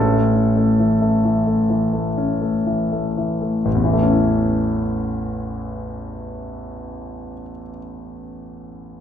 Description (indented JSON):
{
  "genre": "classical, romantic character piece for solo piano",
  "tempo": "58-70 BPM",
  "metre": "4/4",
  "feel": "rubato",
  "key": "A major",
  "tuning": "A4 = 441 Hz",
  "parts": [
    { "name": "warm concert grand piano", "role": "solo", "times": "0.0-9.0 s", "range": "A1 to A4", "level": "-18 LUFS", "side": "left 1 dB", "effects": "none" }
  ],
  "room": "wet recital hall reverb, RT60 1.4 s",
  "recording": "none",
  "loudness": "-17 LUFS",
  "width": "side -9 dB against mid",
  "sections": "0.0-3.7 A section; 3.7-7.4 B section",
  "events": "slowing down 0.0-3.7",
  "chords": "0.0 A"
}